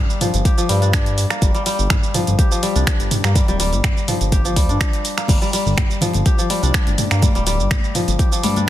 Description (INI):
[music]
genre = afro house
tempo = 124 BPM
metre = 4/4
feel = straight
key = G minor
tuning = A4 = 440 Hz
[part]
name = kora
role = arpeggios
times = 0.0-8.7 s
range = F3 to G4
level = -22 LUFS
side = left 2 dB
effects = sidechain pumping, digital delay
[part]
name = deep house drum kit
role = drums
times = 0.1-8.7 s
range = crash cymbal, finger snaps, hi-hat, shaker, toms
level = -22 LUFS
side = right 2 dB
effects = soft clipping on snare
[part]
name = smooth synth bass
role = bass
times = 0.3-8.7 s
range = D1 to G2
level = -19 LUFS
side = equal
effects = sidechain pumping
[part]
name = electronic kick drum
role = drums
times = 0.5-8.3 s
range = none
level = -17 LUFS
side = equal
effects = none
[part]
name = congas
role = percussion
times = 5.3-8.7 s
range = none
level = -26 LUFS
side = left 4 dB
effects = none
[sound]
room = little or no reverb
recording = dense, heavily limited modern master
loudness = -15 LUFS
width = side -13 dB against mid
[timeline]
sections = 0.0-8.7 A section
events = none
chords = 0.0 Gm7